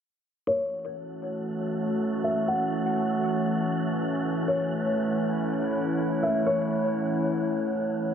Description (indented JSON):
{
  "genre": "hip hop",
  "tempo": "120 BPM",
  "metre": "4/4",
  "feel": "half-time",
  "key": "F# minor",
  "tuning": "A4 = 440 Hz",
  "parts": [
    { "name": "felt-muted upright piano", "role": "melody", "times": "0.5-8.1 s", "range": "C#5 to F#5", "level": "-30 LUFS", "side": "left 1 dB", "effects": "low-pass filter, analog delay" },
    { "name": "warbly tape-like pad", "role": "sustained chords", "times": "1.0-8.1 s", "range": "E3 to C#5", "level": "-26 LUFS", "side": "equal", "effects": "chorus, built-in reverb, low-pass filter" },
    { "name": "wind-like tuned noise texture", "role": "texture", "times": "1.0-8.1 s", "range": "E4 to F#5", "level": "-36 LUFS", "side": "right 2 dB", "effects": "built-in reverb" }
  ],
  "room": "wet spring reverb, RT60 1.6 s",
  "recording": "echo-heavy mix",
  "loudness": "-25 LUFS",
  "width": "side -8 dB against mid",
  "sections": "0.5-8.1 A section",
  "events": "filter sweep 0.5-8.1",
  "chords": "0.5 F#m7"
}